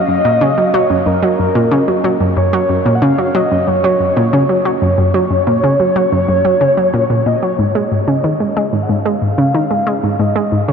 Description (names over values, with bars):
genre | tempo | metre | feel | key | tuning
ambient | 92 BPM | 4/4 | straight | unclear | A4 = 440 Hz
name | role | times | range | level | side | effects
pulse-width lead | melody | 0.0-10.7 s | A#4 to F#5 | -16 LUFS | equal | chorus, analog delay
analog pluck | riff | 0.1-10.7 s | F#2 to G#3 | -14 LUFS | equal | chorus, analog delay
room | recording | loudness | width
wet huge ambient reverb, RT60 7.8 s | dark, warm production | -12 LUFS | side -6 dB against mid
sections
0.0-10.7 A section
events
none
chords
0.0 F#; 7.6 G#5